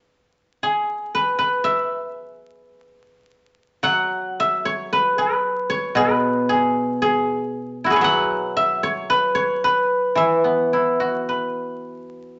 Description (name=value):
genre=chinese traditional, Chinese solo plucked strings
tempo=56 BPM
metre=2/4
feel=uneven beats, rubato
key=E gong mode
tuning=A4 = 441 Hz
part: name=guzheng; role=solo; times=0.6-12.4 s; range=B2 to F#5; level=-21 LUFS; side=equal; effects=none
room=moderate large studio reverb, RT60 1.1 s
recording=vinyl crackle, nothing above 7.8 kHz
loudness=-21 LUFS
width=mono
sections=0.0-3.8 A section; 3.8-12.4 B section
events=none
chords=none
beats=0.63 | 1.65 2.72 | 3.84 4.93 | 5.97 7.01 | 8.04 9.10 | 10.18 11.29